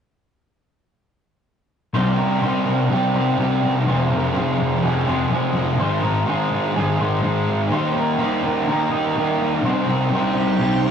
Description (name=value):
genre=rock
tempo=125 BPM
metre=4/4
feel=straight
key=C minor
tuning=A4 = 439 Hz
part: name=electric guitar through a small old amp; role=arpeggios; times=1.9-10.9 s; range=G4 to Eb5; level=-28 LUFS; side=left 2 dB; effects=none
part: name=raw garage guitar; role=riff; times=1.9-10.9 s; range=F2 to Ab4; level=-22 LUFS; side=right 3 dB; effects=overdrive
part: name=thick fuzz guitar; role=riff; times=1.9-10.9 s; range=F2 to Eb4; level=-20 LUFS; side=left 2 dB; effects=distortion
part: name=icy glass pad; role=sustained chords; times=9.6-10.9 s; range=C2 to G5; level=-26 LUFS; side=right 4 dB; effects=chorus, built-in reverb
room=wet booth ambience, RT60 0.2 s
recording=rough rehearsal-room recording, warm saturation, nothing above 11.0 kHz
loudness=-18 LUFS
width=side -7 dB against mid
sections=1.9-10.9 A section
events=none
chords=1.9 Cm; 3.9 Fmadd9; 5.8 Ab; 7.7 Eb; 9.6 Cm